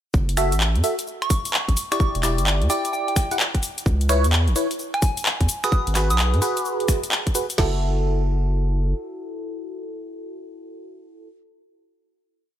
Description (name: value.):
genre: UK garage, two-step garage.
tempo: 129 BPM.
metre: 4/4.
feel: swing 65% on 16ths.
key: unclear.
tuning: A4 = 442 Hz.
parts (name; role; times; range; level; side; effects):
saturated sub bass; bass; 0.1-8.9 s; E1 to G#2; -20 LUFS; equal; none.
garage drum kit; drums; 0.1-7.7 s; crash cymbal, kick drum, snare drum; -21 LUFS; equal; studio reverb.
garage drum kit; drums; 0.1-7.6 s; finger snaps, handclaps, hi-hat, shaker; -24 LUFS; left 1 dB; studio reverb.
FM electric piano; stabs; 0.4-11.3 s; E4 to F#5; -26 LUFS; equal; chorus, phaser, vintage 12-bit sampler grit, digital delay.
soft synth bell; melody; 1.2-6.7 s; G5 to D#6; -28 LUFS; right 1 dB; chorus, digital delay.
room: little or no reverb.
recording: none.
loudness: -19 LUFS.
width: side -11 dB against mid.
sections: 0.1-7.6 drop; 7.6-11.3 final chord.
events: drop 0.1-7.6.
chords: 0.1 F#m7; 2.0 Em7; 3.6 C#m7; 5.5 G#m7; 7.6 F#m7.